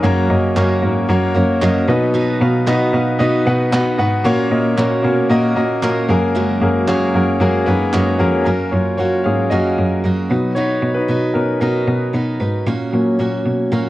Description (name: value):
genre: piano-driven pop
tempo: 114 BPM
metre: 4/4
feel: straight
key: F# major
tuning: A4 = 440 Hz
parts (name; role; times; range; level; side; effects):
- warm concert grand piano; accompaniment; 0.0-13.9 s; A#2 to F#5; -17 LUFS; left 2 dB; none
- picked steel-string acoustic guitar; riff; 0.0-13.9 s; F#2 to C#5; -21 LUFS; right 4 dB; none
- bright cello; bass; 0.0-13.9 s; E#2 to B2; -19 LUFS; equal; none
- group handclap; percussion; 0.6-8.1 s; none; -29 LUFS; right 2 dB; none
room: moderate studio ambience, RT60 0.4 s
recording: worn, warbling old tape, cassette tape, warbly pitch drift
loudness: -14 LUFS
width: side -16 dB against mid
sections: 0.0-8.5 A section; 8.5-13.9 B section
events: grand piano solo 8.5-13.9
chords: 0.0 F#; 1.9 B; 4.2 F#/A#; 6.1 F#add9; 8.5 F#; 10.3 B; 12.7 F#/A#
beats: | 0.04 0.57 1.09 1.62 | 2.15 2.67 3.20 3.72 | 4.25 4.78 5.30 5.83 | 6.36 6.88 7.41 7.93 | 8.46 8.99 9.51 10.04 | 10.56 11.09 11.62 12.14 | 12.67 13.20 13.72